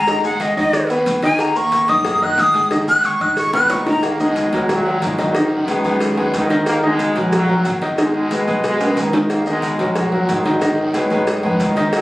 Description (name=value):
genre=latin, salsa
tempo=182 BPM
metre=4/4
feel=straight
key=unclear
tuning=A4 = 440 Hz
part: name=breathy bright jazz flute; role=melody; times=0.0-4.0 s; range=Eb5 to Gb6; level=-16 LUFS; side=left 1 dB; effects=none
part: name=clear grand piano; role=accompaniment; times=0.0-12.0 s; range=Eb3 to Eb6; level=-19 LUFS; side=equal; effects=none
part: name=upright bass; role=bass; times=0.0-12.0 s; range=Ab1 to Ab2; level=-27 LUFS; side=equal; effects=none
part: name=agogo bells and timbales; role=percussion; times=0.1-12.0 s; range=none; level=-26 LUFS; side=equal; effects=none
part: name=congas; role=percussion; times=0.1-12.0 s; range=none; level=-31 LUFS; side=equal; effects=none
part: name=cowbell and bongos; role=percussion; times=0.1-12.0 s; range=none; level=-26 LUFS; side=left 1 dB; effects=none
part: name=guiro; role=percussion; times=0.1-12.0 s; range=none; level=-36 LUFS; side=right 2 dB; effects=none
part: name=maracas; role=percussion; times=0.1-12.0 s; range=none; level=-38 LUFS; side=right 1 dB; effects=none
part: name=bright trombone section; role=melody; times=3.7-12.0 s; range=Gb2 to Bb3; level=-20 LUFS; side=left 1 dB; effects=tape echo
room=moderate studio reverb, RT60 0.7 s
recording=recorded on a phone in the room, club reverb, compression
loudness=-15 LUFS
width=side -17 dB against mid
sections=0.0-4.0 A section; 4.0-12.0 B section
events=flute solo 0.0-4.0; drum fill 2.7-4.0, 8.8-9.3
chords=0.1 Abm; 1.4 Ebm; 2.7 Abm; 4.0 Ebm; 5.4 Abm; 6.7 Ebm; 8.0 Abm; 9.3 Ebm; 10.6 Abm